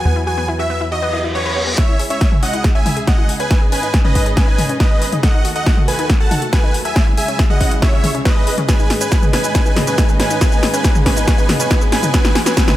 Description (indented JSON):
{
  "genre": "uplifting trance",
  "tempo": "139 BPM",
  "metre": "4/4",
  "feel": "straight",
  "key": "C# minor",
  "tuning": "A4 = 440 Hz",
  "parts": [
    { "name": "supersaw chords", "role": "melody", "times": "0.0-12.8 s", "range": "B4 to A5", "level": "-20 LUFS", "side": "right 1 dB", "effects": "cassette tape, sidechain pumping, dub echo" },
    { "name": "dark studio string section", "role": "sustained chords", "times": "0.0-12.8 s", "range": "C#2 to D#5", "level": "-25 LUFS", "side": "equal", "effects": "sidechain pumping" },
    { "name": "analog pluck", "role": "arpeggios", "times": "0.0-12.7 s", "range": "B3 to C#5", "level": "-26 LUFS", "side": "left 4 dB", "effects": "chorus, sidechain pumping, dub echo" },
    { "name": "tight sequencer bass", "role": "bass", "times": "0.0-1.8 s", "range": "E2", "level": "-21 LUFS", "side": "equal", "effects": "sidechain pumping" },
    { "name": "reverse cymbal and riser", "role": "sound effects", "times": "1.1-12.8 s", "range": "none", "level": "-28 LUFS", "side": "left 1 dB", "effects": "none" },
    { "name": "electronic kick drum", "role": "drums", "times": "1.8-12.7 s", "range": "none", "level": "-14 LUFS", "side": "equal", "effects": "overdrive" },
    { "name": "punchy analog drum machine", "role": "drums", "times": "1.8-12.8 s", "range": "hi-hat, shaker, snare drum, toms", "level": "-19 LUFS", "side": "equal", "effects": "overdrive" }
  ],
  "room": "light reverb, digital ambience",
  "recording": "none",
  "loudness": "-13 LUFS",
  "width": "side -14 dB against mid",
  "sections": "0.0-1.8 A section; 1.8-12.8 B section",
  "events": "reverse cymbal 1.1-1.8; build-up 1.8-12.8; drum fill 1.8-12.8; filter sweep on synth arpeggio sound 1.8-12.8",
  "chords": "0.0 Esus2; 1.8 C#m; 3.5 G#sus4; 5.2 D#dim; 7.0 C#m; 8.7 G#sus4; 12.1 Esus2"
}